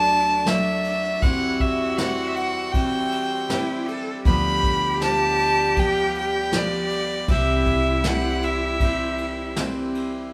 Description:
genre	acoustic folk duo or small band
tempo	79 BPM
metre	4/4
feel	straight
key	unclear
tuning	A4 = 441 Hz
part	rich fiddle	melody	0.0-9.6 s	D5 to B5	-26 LUFS	equal	none
part	warm cello	second line	0.0-10.3 s	C4 to A4	-30 LUFS	equal	none
part	picked steel-string acoustic guitar	accompaniment	0.0-10.3 s	C3 to G4	-30 LUFS	equal	none
part	pedal harmonium	sustained chords	0.0-10.3 s	G3 to C6	-36 LUFS	equal	none
part	upright bass	bass	0.0-10.3 s	C2 to E2	-34 LUFS	equal	none
part	vintage brush drum kit	drums	0.1-10.1 s	kick drum, ride cymbal, snare drum	-28 LUFS	equal	none
room	moderate large studio reverb, RT60 0.9 s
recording	band playing live in one room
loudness	-22 LUFS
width	mono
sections	0.0-10.3 A section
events	none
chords	0.0 D; 1.2 C/E; 4.3 G7/D; 7.3 C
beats	0.46 | 1.22 1.98 2.73 3.49 | 4.25 5.01 5.77 6.53 | 7.29 8.05 8.81 9.57

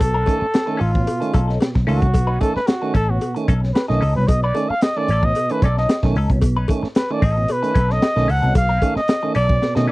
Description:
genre	funk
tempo	112 BPM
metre	4/4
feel	straight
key	B mixolydian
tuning	A4 = 440 Hz
part	mellow trumpet	melody	0.0-9.9 s	E#4 to F#5	-21 LUFS	equal	none
part	direct-recorded clean electric guitar	accompaniment	0.0-9.9 s	C#4 to B4	-29 LUFS	left 4 dB	wah
part	tonewheel organ	stabs	0.0-9.9 s	B2 to C#4	-24 LUFS	right 3 dB	overdrive
part	vintage muted picked electric bass	bass	0.0-9.9 s	A1 to B2	-19 LUFS	equal	none
part	crunchy breakbeat drum kit	drums	0.0-9.9 s	hi-hat, kick drum, snare drum	-20 LUFS	equal	none
part	cowbell	percussion	0.0-9.8 s	none	-29 LUFS	left 4 dB	none
room	little or no reverb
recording	dry, close 1970s-style studio recording, vinyl crackle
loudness	-16 LUFS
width	side -20 dB against mid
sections	0.0-9.9 A section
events	trumpet solo 0.0-9.9; drum fill 9.6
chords	0.0 B9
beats	| 0.01 0.55 1.08 1.61 | 2.15 2.68 3.22 3.75 | 4.28 4.82 5.35 5.88 | 6.42 6.95 7.49 8.02 | 8.55 9.09 9.62

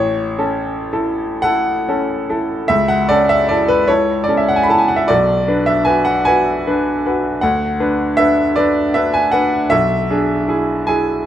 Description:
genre	classical, romantic nocturne for solo piano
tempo	51 BPM (dotted quarters)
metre	6/8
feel	uneven beats, rubato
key	A major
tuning	A4 = 441 Hz
part	bright grand piano	solo	0.0-11.3 s	A1 to B5	-14 LUFS	equal	none
room	moderate large studio reverb, RT60 1.5 s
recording	dark, warm production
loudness	-13 LUFS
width	side -11 dB against mid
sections	0.0-11.3 A section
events	none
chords	0.0 A; 2.7 A/C#; 5.1 Bm; 7.4 Bm/D; 9.7 E7/B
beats	1.42 | 2.69 3.88 | 5.08 6.25 | 7.42 8.56 | 9.71 10.87

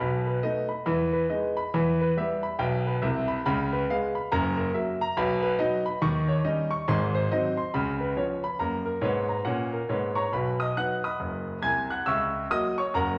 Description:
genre	jazz, stride piano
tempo	140 BPM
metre	4/4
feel	swing 61% on 8ths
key	B major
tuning	A4 = 440 Hz
part	clear concert grand piano	solo	0.0-13.2 s	F#1 to G#6	-27 LUFS	equal	none
room	wet large studio reverb, RT60 1.2 s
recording	none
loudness	-27 LUFS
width	mono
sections	0.0-10.3 A section; 10.3-13.2 B section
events	none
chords	0.0 B7; 0.9 Emaj7; 1.7 Em; 3.5 C#7; 4.3 F#7; 5.2 B; 6.0 D#7; 6.9 G#7; 7.7 C#7; 8.6 F#; 10.3 B; 12.1 F#7/C#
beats	| 0.02 0.45 0.88 1.31 | 1.74 2.17 2.59 3.02 | 3.45 3.88 4.31 4.74 | 5.17 5.60 6.03 6.46 | 6.88 7.32 7.75 8.18 | 8.61 9.04 9.47 9.90 | 10.33 10.77 11.20 11.63 | 12.06 12.50 12.93

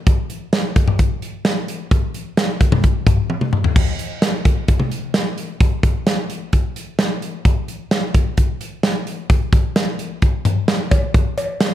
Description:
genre	pop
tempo	130 BPM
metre	4/4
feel	straight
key	none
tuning	none
part	modern studio drum kit	drums	0.1-11.7 s	cowbell, crash cymbal, hi-hat, kick drum, snare drum, toms	-16 LUFS	equal	none
room	moderate recital hall reverb, RT60 1.5 s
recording	none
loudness	-16 LUFS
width	side -12 dB against mid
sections	0.0-3.8 A section; 3.8-11.7 B section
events	drum fill 3.3-3.8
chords	none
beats	| 0.07 0.53 0.99 1.45 | 1.91 2.37 2.84 3.30 | 3.76 4.22 4.68 5.14 | 5.61 6.07 6.53 6.99 | 7.45 7.91 8.37 8.84 | 9.30 9.76 10.22 10.68 | 11.14 11.61

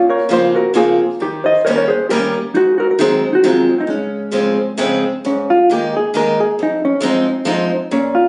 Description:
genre	musette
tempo	134 BPM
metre	3/4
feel	rubato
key	Db major, Ab major from 5.2 s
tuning	A4 = 442 Hz
part	hollow-body jazz guitar	melody	0.0-8.3 s	Ab3 to Eb5	-16 LUFS	equal	none
part	picked acoustic archtop guitar	accompaniment	0.0-8.2 s	F2 to Eb4	-21 LUFS	equal	none
room	wet studio reverb, RT60 0.7 s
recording	recorded on a phone in the room, studio reverb, nothing above 10.7 kHz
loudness	-15 LUFS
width	mono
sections	0.0-5.2 A section; 5.2-8.3 B section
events	none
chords	0.0 Bbmadd9; 1.2 Eb7; 2.5 Ab7; 3.9 Dbmaj7; 5.2 Absus2; 6.6 Fm7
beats	0.30 0.75 | 1.21 1.66 2.10 | 2.55 2.99 3.43 | 3.88 4.33 4.79 | 5.25 5.70 6.14 | 6.58 7.03 7.47 | 7.91

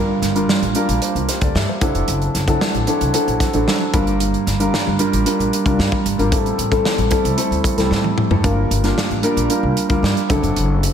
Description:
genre	polished 1980s jazz-funk pop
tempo	113 BPM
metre	4/4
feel	straight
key	G dorian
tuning	A4 = 440 Hz
part	warm concert grand piano	accompaniment	0.0-10.9 s	F#3 to F5	-18 LUFS	equal	lush chorus, slapback echo
part	upright bass	bass	0.0-10.9 s	F1 to A2	-21 LUFS	equal	none
part	modern studio drum kit	drums	0.2-10.9 s	hi-hat, kick drum, snare drum, toms	-21 LUFS	equal	none
room	moderate scoring stage reverb, RT60 1.9 s, studio reverb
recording	big arena sound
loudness	-15 LUFS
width	side -8 dB against mid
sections	0.0-10.9 A section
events	drum fill 7.9-8.4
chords	0.0 Gm7; 1.8 D9; 3.9 Gm7; 6.3 Am7; 8.4 Gm7; 10.3 D9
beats	0.49 1.02 1.55 | 2.08 2.61 3.14 3.67 | 4.20 4.73 5.26 5.79 | 6.32 6.85 7.38 7.91 | 8.44 8.97 9.50 10.03 | 10.56

